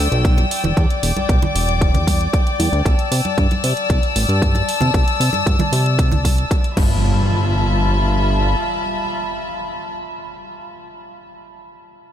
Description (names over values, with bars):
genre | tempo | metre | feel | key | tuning
nu-disco, nu disco | 115 BPM | 4/4 | straight | G mixolydian | A4 = 436 Hz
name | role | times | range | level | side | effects
warm chamber string section | sustained chords | 0.0-9.9 s | G3 to E6 | -22 LUFS | left 2 dB | sidechain pumping
fat analog bass | bass | 0.0-8.6 s | E1 to C3 | -18 LUFS | equal | tube saturation
house drum kit | drums | 0.1-6.9 s | crash cymbal, hi-hat | -28 LUFS | right 3 dB | overdrive
electronic kick drum | drums | 0.2-6.9 s | none | -17 LUFS | equal | overdrive
congas | percussion | 0.4-6.9 s | none | -28 LUFS | right 2 dB | none
impact | sound effects | 6.8-10.0 s | none | -25 LUFS | equal | none
room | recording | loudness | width
light reverb, digital ambience | none | -15 LUFS | side -10 dB against mid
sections
0.0-7.0 A section; 7.0-11.2 B section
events
none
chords
0.0 Em7; 2.9 C69; 6.8 G13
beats
0.25 | 0.77 1.29 1.81 2.33 | 2.85 3.38 3.90 4.42 | 4.94 5.46 5.99 6.51 | 7.03 7.55 8.07 8.59 | 9.12 9.64